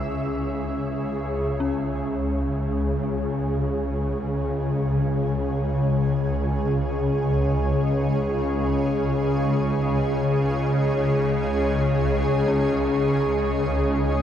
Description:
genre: dark ambient drone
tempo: free time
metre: none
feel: none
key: C# minor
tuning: A4 = 440 Hz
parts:
  - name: granular cloud pad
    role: sustained chords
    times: 0.0-14.2 s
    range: G#4 to E5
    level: -26 LUFS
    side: equal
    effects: built-in reverb
  - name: dark detuned synth bell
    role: arpeggios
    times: 0.0-14.2 s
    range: C#4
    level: -33 LUFS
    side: left 2 dB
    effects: none
  - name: swarming drone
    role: drone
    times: 0.0-14.2 s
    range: C#2 to C#3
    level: -23 LUFS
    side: equal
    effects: built-in reverb
  - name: metallic inharmonic drone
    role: texture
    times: 0.0-1.6 s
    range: G#4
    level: -42 LUFS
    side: right 2 dB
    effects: chorus, built-in reverb
room: wet huge ambient reverb, RT60 8.6 s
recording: dark, warm production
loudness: -21 LUFS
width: side -10 dB against mid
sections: 0.0-1.6 A section; 1.6-14.2 B section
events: none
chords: 0.0 C#5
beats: free time

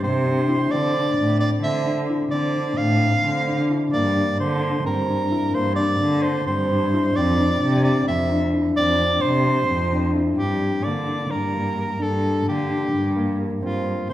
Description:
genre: contemporary instrumental, chamber music in an uneven meter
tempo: 260 BPM (eighths)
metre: 7/8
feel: straight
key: G dorian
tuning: A4 = 440 Hz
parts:
  - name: breathy soprano saxophone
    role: melody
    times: 0.0-14.1 s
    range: F4 to F5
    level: -24 LUFS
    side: right 1 dB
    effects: none
  - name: concert harp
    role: arpeggios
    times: 0.0-14.1 s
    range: A3 to Bb4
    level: -23 LUFS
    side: left 1 dB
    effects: none
  - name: muted cello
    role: bass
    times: 0.0-14.1 s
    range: F2 to D3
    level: -23 LUFS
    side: equal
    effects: none
room: wet recital hall reverb, RT60 1.4 s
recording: heard from further back in the room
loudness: -19 LUFS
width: side -13 dB against mid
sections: 0.0-10.4 A section; 10.4-14.1 B section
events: none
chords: 0.0 C5; 0.7 Dm7; 3.9 Gm; 7.2 F5; 10.4 Gm; 13.6 F5/G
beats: 0.03 0.26 0.49 | 0.72 0.95 1.18 1.41 1.64 1.86 2.10 | 2.33 2.55 2.78 3.01 3.24 3.47 3.70 | 3.93 4.16 4.39 4.62 4.85 5.08 5.31 | 5.54 5.77 6.00 6.23 6.46 6.70 6.92 | 7.16 7.39 7.62 7.85 8.08 8.31 8.54 | 8.77 9.00 9.23 9.46 9.69 9.92 10.15 | 10.39 10.62 10.85 11.08 11.31 11.54 11.77 | 12.01 12.24 12.47 12.70 12.93 13.16 13.39 | 13.63 13.86 14.09

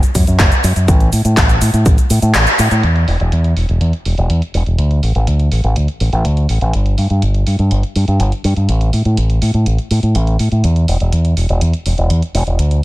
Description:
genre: italo disco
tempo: 123 BPM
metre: 4/4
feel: straight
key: unclear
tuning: A4 = 440 Hz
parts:
  - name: house drum kit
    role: drums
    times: 0.0-12.8 s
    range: cabasa, handclaps, hi-hat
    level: -21 LUFS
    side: equal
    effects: overdrive, low-pass filter on hats, low-pass filter on perc, low-pass filter on snare, low-pass filter on room, gated reverb
  - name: fingered electric bass with an envelope filter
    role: bass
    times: 0.2-12.8 s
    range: E1 to A2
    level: -12 LUFS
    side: equal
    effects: tube saturation
  - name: electronic kick drum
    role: drums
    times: 0.2-2.0 s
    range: none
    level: -12 LUFS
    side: equal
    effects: overdrive
room: little or no reverb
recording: none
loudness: -12 LUFS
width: side -17 dB against mid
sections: 0.0-2.8 A section; 2.8-12.8 B section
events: kick drops out 2.3-2.8; band accent 2.3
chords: none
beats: 0.40 | 0.88 1.37 1.86 2.35 | 2.83 3.32 3.81 4.30 | 4.79 5.27 5.76 6.25 | 6.74 7.22 7.71 8.20 | 8.69 9.18 9.66 10.15 | 10.64 11.13 11.62 12.10 | 12.59

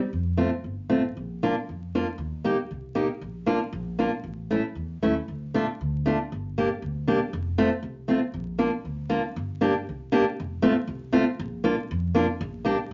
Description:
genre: alpine folk, alpine dance band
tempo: 117 BPM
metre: 2/4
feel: rubato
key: Bb major, G minor from 9.4 s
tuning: A4 = 439 Hz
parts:
  - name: upright bass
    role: bass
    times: 0.1-12.9 s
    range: F1 to F2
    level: -35 LUFS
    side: equal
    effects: none
  - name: fingerpicked steel-string acoustic guitar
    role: accompaniment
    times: 0.4-12.8 s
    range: A3 to G4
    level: -26 LUFS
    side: equal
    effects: none
room: wet club reverb, RT60 0.5 s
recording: vinyl crackle, nothing above 7.5 kHz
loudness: -27 LUFS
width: mono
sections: 0.0-9.4 A section; 9.4-12.9 B section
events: none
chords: 0.1 F; 1.2 Bb; 2.2 Eb; 3.2 Bb; 4.2 A; 5.3 Dm; 6.3 Gm; 7.3 F; 8.3 Bb; 9.4 Gm; 10.4 F; 11.4 Bb; 12.4 Gm/Bb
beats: | 0.12 0.64 | 1.16 1.68 | 2.19 2.70 | 3.21 3.73 | 4.24 4.75 | 5.27 5.79 | 6.30 6.81 | 7.32 7.82 | 8.32 8.83 | 9.35 9.87 | 10.37 10.87 | 11.37 11.88 | 12.39 12.90

